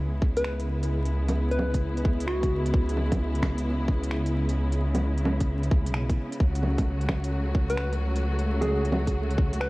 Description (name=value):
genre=future garage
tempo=131 BPM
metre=4/4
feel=swing 66% on 16ths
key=C# minor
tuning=A4 = 441 Hz
part: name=muted studio string section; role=sustained chords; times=0.0-9.7 s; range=C#3 to F#4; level=-31 LUFS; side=equal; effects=sidechain pumping
part: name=dark detuned saw bass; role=bass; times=0.0-9.7 s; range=B1 to C#2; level=-27 LUFS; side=equal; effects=sidechain pumping
part: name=electronic kick drum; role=drums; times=0.2-9.5 s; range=none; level=-24 LUFS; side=equal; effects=vintage 12-bit sampler grit
part: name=soft struck synth lead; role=melody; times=0.4-2.9, 7.7-9.7 s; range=F#4 to B4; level=-32 LUFS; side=equal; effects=chorus, cassette tape, analog delay
part: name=organic electronic drum kit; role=drums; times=0.4-9.7 s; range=bongos, finger snaps, hi-hat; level=-32 LUFS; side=right 1 dB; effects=vintage 12-bit sampler grit
room=light reverb, digital ambience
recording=vinyl crackle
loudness=-24 LUFS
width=side -21 dB against mid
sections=0.0-9.7 A section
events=none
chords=0.0 C#m7; 6.4 F#m/C#